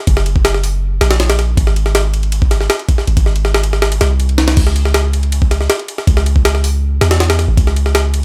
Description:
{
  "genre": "drum and bass, jungle",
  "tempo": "160 BPM",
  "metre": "4/4",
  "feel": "straight",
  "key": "C# dorian",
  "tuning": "A4 = 440 Hz",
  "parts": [
    { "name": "long sustained 808-style bass", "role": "bass", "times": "0.1-8.2 s", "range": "F#1 to E2", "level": "-16 LUFS", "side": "equal", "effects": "tube saturation" },
    { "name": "jungle sampler-style drum kit", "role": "drums", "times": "0.1-8.2 s", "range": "crash cymbal, hi-hat, kick drum, ride cymbal, snare drum", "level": "-16 LUFS", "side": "equal", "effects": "none" }
  ],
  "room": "digital ambience",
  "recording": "none",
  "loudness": "-14 LUFS",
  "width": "mono",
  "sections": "0.0-4.6 A section; 4.6-8.2 A section",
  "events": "drop 0.0-4.6, 4.6-8.2",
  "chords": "none",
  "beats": "| 0.07 0.45 0.82 1.20 | 1.57 1.95 2.32 2.70 | 3.07 3.45 3.82 4.20 | 4.57 4.95 5.32 5.70 | 6.07 6.45 6.82 7.20 | 7.57 7.95"
}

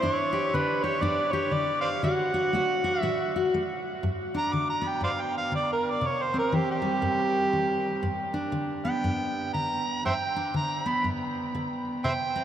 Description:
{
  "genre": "acoustic country blues, solo or duo",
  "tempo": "120 BPM",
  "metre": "4/4",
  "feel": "swing 61% on 8ths",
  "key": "G major",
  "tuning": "A4 = 440 Hz",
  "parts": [
    { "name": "overdriven harmonica", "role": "melody", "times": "0.0-12.4 s", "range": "G4 to D6", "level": "-27 LUFS", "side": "right 2 dB", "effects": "none" },
    { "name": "fingerpicked steel-string acoustic guitar", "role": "accompaniment", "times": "0.0-12.4 s", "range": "G2 to G4", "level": "-28 LUFS", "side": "left 1 dB", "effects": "none" }
  ],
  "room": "wet huge ambient reverb, RT60 8.0 s",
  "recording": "in a vast, echoing space",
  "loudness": "-25 LUFS",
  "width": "side -10 dB against mid",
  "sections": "0.0-4.0 A section; 4.0-12.4 B section",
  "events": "harmonica solo 4.0-12.4",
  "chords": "0.0 G5; 2.0 D; 4.0 G; 6.0 C; 8.0 G",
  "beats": "| 0.04 0.54 1.04 1.54 | 2.04 2.53 3.03 3.53 | 4.03 4.53 5.03 5.53 | 6.03 6.53 7.03 7.53 | 8.03 8.53 9.04 9.54 | 10.04 10.54 11.04 11.54 | 12.05"
}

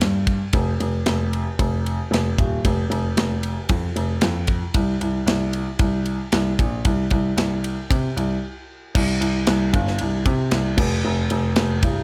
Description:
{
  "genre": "heavy metal",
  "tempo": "114 BPM",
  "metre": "4/4",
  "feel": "straight",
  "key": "C minor",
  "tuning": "A4 = 439 Hz",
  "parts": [
    { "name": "warm grand piano", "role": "bass", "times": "0.0-12.0 s", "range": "C1 to C3", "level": "-24 LUFS", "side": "equal", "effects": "none" },
    { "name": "tight metal drum kit", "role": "drums", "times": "0.0-12.0 s", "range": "crash cymbal, kick drum, ride cymbal, snare drum", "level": "-26 LUFS", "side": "equal", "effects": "none" }
  ],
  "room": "little or no reverb",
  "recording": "none",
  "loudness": "-22 LUFS",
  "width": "mono",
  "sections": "0.0-8.9 A section; 8.9-12.0 B section",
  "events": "break 8.4-8.9",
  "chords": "none",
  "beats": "0.02 | 0.54 1.07 1.59 2.12 | 2.64 3.17 3.69 4.22 | 4.75 5.27 5.80 6.32 | 6.85 7.38 7.90 8.43 | 8.95 9.47 10.00 10.52 | 11.05 11.57"
}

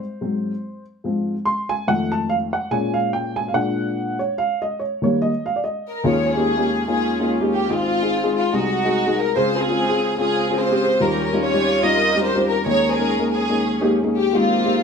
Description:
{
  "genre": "gospel",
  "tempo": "144 BPM",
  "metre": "4/4",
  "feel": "swing 56% on 8ths",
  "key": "unclear",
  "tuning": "A4 = 441 Hz",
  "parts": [
    { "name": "dark upright piano", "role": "accompaniment", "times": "0.0-14.8 s", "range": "Ab1 to C6", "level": "-20 LUFS", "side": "left 1 dB", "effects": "none" },
    { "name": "dark studio string section", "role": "melody", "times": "5.9-14.8 s", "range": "Bb3 to Eb5", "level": "-20 LUFS", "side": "equal", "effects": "none" }
  ],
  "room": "moderate studio reverb, RT60 0.8 s",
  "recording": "band playing live in one room",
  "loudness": "-18 LUFS",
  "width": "side -6 dB against mid",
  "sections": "0.0-6.0 A section; 6.0-14.8 B section",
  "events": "upright piano solo 0.0-6.0",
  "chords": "0.2 Ab7; 1.0 Ab6; 1.9 F7; 2.7 Bbm7; 3.5 Bbaug7; 4.4 Eb; 6.0 Eb9sus4; 7.7 Ab6; 8.5 Ab7/C; 9.3 Dbmaj7; 11.0 Eb13; 12.7 Eb7sus4; 14.3 Abmaj9",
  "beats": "0.21 0.63 | 1.04 1.46 1.88 2.29 | 2.71 3.12 3.54 3.96 | 4.37 4.79 5.20 5.62 | 6.03 6.45 6.86 7.28 | 7.69 8.11 8.52 8.93 | 9.35 9.76 10.18 10.59 | 11.01 11.42 11.84 12.25 | 12.67 13.08 13.50 13.91 | 14.33 14.75"
}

